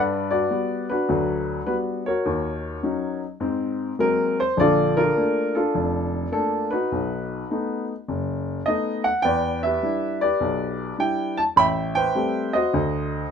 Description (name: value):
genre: solo jazz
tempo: 103 BPM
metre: 4/4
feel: swing 67% on 8ths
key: G major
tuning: A4 = 438 Hz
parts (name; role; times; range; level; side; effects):
- warm upright piano; solo; 0.0-13.3 s; F1 to B5; -21 LUFS; equal; none
room: light reverb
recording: minimal, uncompressed stereo recording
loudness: -21 LUFS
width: side -7 dB against mid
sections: 0.0-13.3 A section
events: none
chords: 0.0 Gmaj7; 2.2 Ebm7; 3.4 Ab9; 4.6 Bbmaj7; 6.9 B7; 9.2 Em7; 11.6 Am9; 12.7 D7b9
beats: 0.49 1.08 1.66 | 2.24 2.83 3.41 3.99 | 4.58 5.16 5.74 6.32 | 6.91 7.49 8.07 8.65 | 9.24 9.82 10.40 10.98 | 11.57 12.15 12.73 13.31